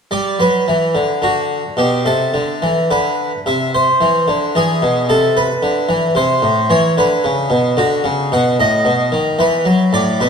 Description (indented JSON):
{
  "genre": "classical, baroque-style suite movement for harpsichord",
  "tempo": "111 BPM",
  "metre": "3/4",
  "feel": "rubato",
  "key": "unclear",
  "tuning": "A4 = 441 Hz",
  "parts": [
    { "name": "harpsichord", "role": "solo", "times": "0.1-10.3 s", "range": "A2 to F#5", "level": "-13 LUFS", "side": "equal", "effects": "none" }
  ],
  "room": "wet recital hall reverb, RT60 1.7 s",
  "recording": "dark, warm production",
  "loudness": "-13 LUFS",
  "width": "side -6 dB against mid",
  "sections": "0.1-10.3 A section",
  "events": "none",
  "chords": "0.1 G; 1.2 N.C.; 1.8 Bm7; 3.5 Cadd9; 4.6 E; 5.1 Am/C; 6.7 E5; 7.8 D; 8.3 B7; 9.4 E5"
}